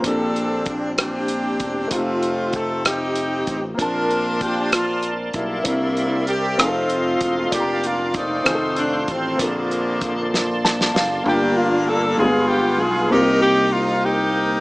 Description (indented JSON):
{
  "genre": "slow gospel",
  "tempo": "64 BPM (dotted quarters)",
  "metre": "6/8",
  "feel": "straight",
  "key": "Bb major",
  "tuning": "A4 = 442 Hz",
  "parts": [
    { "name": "warm upright piano", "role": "accompaniment", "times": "0.0-14.6 s", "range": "G2 to Bb5", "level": "-24 LUFS", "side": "left 1 dB", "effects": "none" },
    { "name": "modern bright fingered electric bass", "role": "bass", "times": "0.0-14.6 s", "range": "E1 to C2", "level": "-28 LUFS", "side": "equal", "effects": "none" },
    { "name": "warm soul drum kit", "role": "drums", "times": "0.0-11.1 s", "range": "hi-hat, kick drum, rim click, snare drum", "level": "-22 LUFS", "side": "equal", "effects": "none" },
    { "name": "clear saxophone section", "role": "melody", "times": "0.1-14.6 s", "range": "D3 to Bb4", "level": "-20 LUFS", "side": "equal", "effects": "none" },
    { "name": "bright tonewheel organ", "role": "sustained chords", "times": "3.8-11.2 s", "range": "Bb3 to D6", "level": "-27 LUFS", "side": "equal", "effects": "fast rotary speaker, overdrive, chorus vibrato" }
  ],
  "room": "light reverb, small room ambience",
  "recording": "small speaker sound",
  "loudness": "-18 LUFS",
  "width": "side -22 dB against mid",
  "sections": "0.0-11.3 A section; 11.3-14.6 B section",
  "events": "drum fill 10.3-11.3; upright piano fill 10.3-11.3",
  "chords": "0.0 Bb69; 1.9 F9; 3.8 Bbmaj9; 5.7 C9; 6.6 F7; 7.5 Bb/F; 8.5 F7; 9.4 Bbmaj9; 11.3 Gm7; 12.2 G7b9; 13.1 Cm7"
}